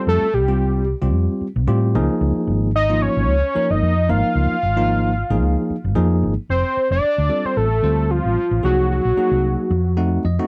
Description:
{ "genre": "electric jazz fusion", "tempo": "112 BPM", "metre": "4/4", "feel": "swing 55% on 16ths", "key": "unclear", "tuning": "A4 = 440 Hz", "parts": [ { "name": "fat analog lead", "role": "melody", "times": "0.0-9.9 s", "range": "F4 to F5", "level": "-22 LUFS", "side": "equal", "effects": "slapback echo" }, { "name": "bell-like tine electric piano", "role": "accompaniment", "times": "0.0-10.5 s", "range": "F3 to Gb5", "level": "-24 LUFS", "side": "equal", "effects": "none" }, { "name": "hollow-body short-scale fingered electric bass", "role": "bass", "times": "0.1-10.4 s", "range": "F1 to A2", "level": "-22 LUFS", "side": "equal", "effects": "none" } ], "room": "light reverb", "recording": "dry, close 1970s-style studio recording", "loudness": "-19 LUFS", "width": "mono", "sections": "0.0-6.5 A section; 6.5-10.5 B section", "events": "tine electric piano fill 9.7-10.5", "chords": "0.0 Fadd9; 1.9 Dbadd9; 6.5 F6; 8.6 Cm7b5; 9.7 F7b9" }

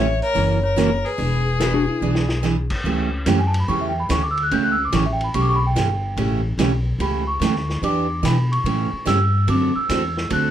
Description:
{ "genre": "country, western swing", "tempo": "145 BPM", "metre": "4/4", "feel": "swing 67% on 8ths", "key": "A mixolydian", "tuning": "A4 = 441 Hz", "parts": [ { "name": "clear fiddle", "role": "melody", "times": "0.0-2.4 s", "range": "G#4 to C#5", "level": "-26 LUFS", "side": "left 6 dB", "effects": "none" }, { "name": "large celesta", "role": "second line", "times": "0.0-10.5 s", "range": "B4 to G6", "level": "-24 LUFS", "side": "equal", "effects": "none" }, { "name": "picked steel-string acoustic guitar", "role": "accompaniment", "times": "0.0-10.5 s", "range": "C#3 to A4", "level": "-22 LUFS", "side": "right 4 dB", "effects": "none" }, { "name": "upright bass", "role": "bass", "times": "0.0-10.5 s", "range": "E1 to B2", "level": "-22 LUFS", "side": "left 1 dB", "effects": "none" }, { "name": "vintage drum kit", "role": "drums", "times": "0.2-10.4 s", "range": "crash cymbal, hi-hat, kick drum, ride cymbal, snare drum", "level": "-30 LUFS", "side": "left 1 dB", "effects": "none" }, { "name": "clean lap steel guitar", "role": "second line", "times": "1.6-2.1 s", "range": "D4 to B4", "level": "-23 LUFS", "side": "left 6 dB", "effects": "none" } ], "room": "moderate club reverb, RT60 0.6 s", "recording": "none", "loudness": "-18 LUFS", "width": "side -10 dB against mid", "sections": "0.0-2.8 A section; 2.8-10.5 B section", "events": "drum fill 2.0-2.4; celesta solo 2.8-10.5", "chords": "0.4 F#7; 1.2 E7; 2.8 A9; 7.8 Em7; 8.7 A7; 9.5 D9" }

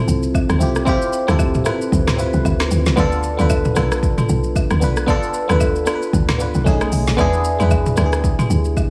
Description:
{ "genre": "amapiano", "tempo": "114 BPM", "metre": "4/4", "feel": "swing 58% on 16ths", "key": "unclear", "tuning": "A4 = 441 Hz", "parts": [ { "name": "barking FM electric piano", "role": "accompaniment", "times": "0.0-8.9 s", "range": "A3 to B4", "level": "-22 LUFS", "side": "equal", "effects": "chorus" }, { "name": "woody log drum bass", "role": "bass", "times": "0.1-8.8 s", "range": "A1 to E2", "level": "-21 LUFS", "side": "equal", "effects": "none" }, { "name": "deep house drum kit", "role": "drums", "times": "0.1-8.9 s", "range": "hi-hat, kick drum, rim click, shaker, snare drum, toms", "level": "-22 LUFS", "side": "equal", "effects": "none" }, { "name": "woodblock and agogo bells", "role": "percussion", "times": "0.3-8.9 s", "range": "none", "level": "-32 LUFS", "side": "equal", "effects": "none" } ], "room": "digital ambience", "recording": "studio reverb", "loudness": "-17 LUFS", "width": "mono", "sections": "0.0-8.9 A section", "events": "none", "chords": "0.0 Dm7; 3.0 Bm7b5; 6.7 B13; 7.2 E7" }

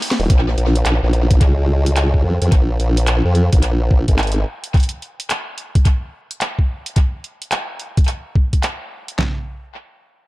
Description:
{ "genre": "glitch hop", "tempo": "108 BPM", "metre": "4/4", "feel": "swing 63% on 16ths", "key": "Bb minor", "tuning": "A4 = 440 Hz", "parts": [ { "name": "drum and bass drum kit", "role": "drums", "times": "0.0-9.2 s", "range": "handclaps, hi-hat, snare drum", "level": "-24 LUFS", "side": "equal", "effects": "tape echo" }, { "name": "formant-sweep wobble bass", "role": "bass", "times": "0.2-4.4 s", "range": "Eb1 to F2", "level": "-15 LUFS", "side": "equal", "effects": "chorus" }, { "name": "boom bap sampler-style drum kit", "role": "drums", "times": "0.3-9.3 s", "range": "handclaps, kick drum, snare drum, toms", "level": "-14 LUFS", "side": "equal", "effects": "none" } ], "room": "little or no reverb", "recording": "echo-heavy mix", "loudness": "-15 LUFS", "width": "side -19 dB against mid", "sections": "0.3-9.2 A section; 9.2-10.3 B section", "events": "drum fill 0.0", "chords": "none" }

